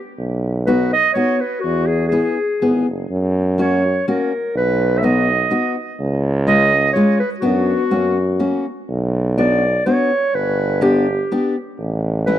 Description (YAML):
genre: alpine folk, alpine dance band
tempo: 124 BPM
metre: 3/4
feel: swing 55% on 8ths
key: unclear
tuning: A4 = 440 Hz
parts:
  - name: clear tuba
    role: bass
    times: 0.2-12.4 s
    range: F#1 to F#2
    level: -19 LUFS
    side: right 1 dB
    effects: none
  - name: mellow clarinet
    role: melody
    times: 0.7-12.4 s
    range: F#4 to E5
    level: -19 LUFS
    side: right 1 dB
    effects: tape echo
  - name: fingerpicked steel-string acoustic guitar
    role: accompaniment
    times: 0.7-12.4 s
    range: G#3 to G#4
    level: -19 LUFS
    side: left 2 dB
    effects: none
room: light reverb, small room ambience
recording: dry, close 1970s-style studio recording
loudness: -15 LUFS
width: side -11 dB against mid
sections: 0.0-12.4 A section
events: none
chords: 0.2 B; 1.6 E; 3.1 F#; 4.6 B; 6.0 C#; 7.4 Bm/F#; 7.9 F#; 8.9 Bm; 10.3 G; 11.8 A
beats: | 0.19 0.68 1.16 | 1.64 2.12 2.61 | 3.10 3.59 4.07 | 4.55 5.03 5.51 | 5.99 6.47 6.96 | 7.44 7.93 8.41 | 8.90 9.38 9.87 | 10.35 10.83 11.31 | 11.78 12.26